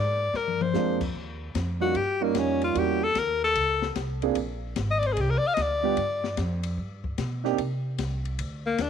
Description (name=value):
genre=jazz, small-group swing and bop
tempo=149 BPM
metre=4/4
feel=swing 66% on 8ths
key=Bb mixolydian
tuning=A4 = 440 Hz
part: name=clear alto saxophone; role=melody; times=0.0-8.9 s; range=Bb3 to F5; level=-26 LUFS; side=left 4 dB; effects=none
part: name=upright bass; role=bass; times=0.0-8.9 s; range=Ab1 to C3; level=-31 LUFS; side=equal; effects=none
part: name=open jazz drum kit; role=drums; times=0.3-8.9 s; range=crash cymbal, hi-hat, kick drum, ride cymbal, snare drum, toms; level=-34 LUFS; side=left 8 dB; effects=none
part: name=dark baby grand piano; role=accompaniment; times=0.7-7.6 s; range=G3 to Ab4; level=-28 LUFS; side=right 13 dB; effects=none
room=light reverb, small room reverb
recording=1960s-style stereo with parts hard left and right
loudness=-24 LUFS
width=side -8 dB against mid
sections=0.0-8.9 A section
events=alto saxophone solo 0.0-8.9; drum fill 0.3-0.7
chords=0.0 Bb9; 1.1 Eb9; 2.8 Edim7; 4.4 Bb9; 6.0 G7; 7.6 N.C.